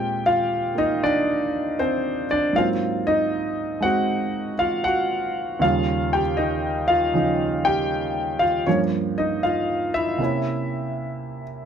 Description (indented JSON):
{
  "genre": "solo jazz",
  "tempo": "78 BPM",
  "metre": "4/4",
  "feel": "swing 67% on 8ths",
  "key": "Eb mixolydian",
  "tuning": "A4 = 440 Hz",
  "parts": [
    { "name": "warm concert grand piano", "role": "solo", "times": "0.0-11.7 s", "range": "Eb2 to G5", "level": "-20 LUFS", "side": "equal", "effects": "none" }
  ],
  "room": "light reverb",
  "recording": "close, detailed microphones",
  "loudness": "-20 LUFS",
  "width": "side -8 dB against mid",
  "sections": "0.0-11.7 A section",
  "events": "none",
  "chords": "0.0 Bb9; 2.5 Ab9; 5.6 Eb9; 8.7 Gm7b5; 10.2 C7b9"
}